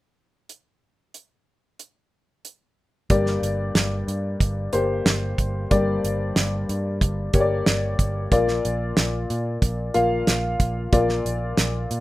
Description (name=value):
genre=piano-driven pop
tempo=92 BPM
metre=4/4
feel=straight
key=G minor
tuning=A4 = 440 Hz
part: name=damped 70s drum kit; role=drums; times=0.5-12.0 s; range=hi-hat, kick drum, snare drum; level=-21 LUFS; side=right 1 dB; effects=none
part: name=warm upright piano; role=accompaniment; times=3.1-12.0 s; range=G2 to F5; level=-24 LUFS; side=left 2 dB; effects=none
part: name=vintage muted picked electric bass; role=bass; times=3.1-12.0 s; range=G1 to Bb2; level=-27 LUFS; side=right 1 dB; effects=none
room=light reverb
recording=rough home demo mix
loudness=-20 LUFS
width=side -16 dB against mid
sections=0.5-3.1 A section; 3.1-12.0 B section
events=none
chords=0.5 N.C.; 3.1 Gm; 8.3 Bb